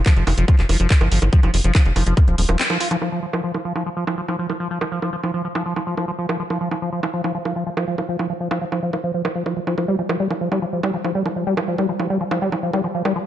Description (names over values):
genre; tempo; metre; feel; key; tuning
psychedelic trance; 142 BPM; 4/4; straight; unclear; A4 = 440 Hz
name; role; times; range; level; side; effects
tight sequencer bass; bass; 0.0-2.6 s; Eb1 to G1; -18 LUFS; equal; none
liquid acid bass; riff; 0.1-13.2 s; F3 to F4; -22 LUFS; equal; chorus, auto-pan, sidechain pumping, digital delay
electronic kick drum; drums; 0.1-2.3 s; none; -14 LUFS; equal; none
garage drum kit; drums; 0.1-13.1 s; bongos, handclaps, hi-hat; -26 LUFS; right 4 dB; low-pass filter on hats, low-pass filter on perc, low-pass filter on snare, low-pass filter on room
room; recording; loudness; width
light reverb; dark, warm production, nothing above 10.7 kHz; -18 LUFS; side -12 dB against mid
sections
0.0-3.0 A section; 3.0-13.3 B section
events
filter sweep on acid bass 0.0-3.0, 3.0-13.3; break 2.6-3.0; band accent 2.6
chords
0.0 F5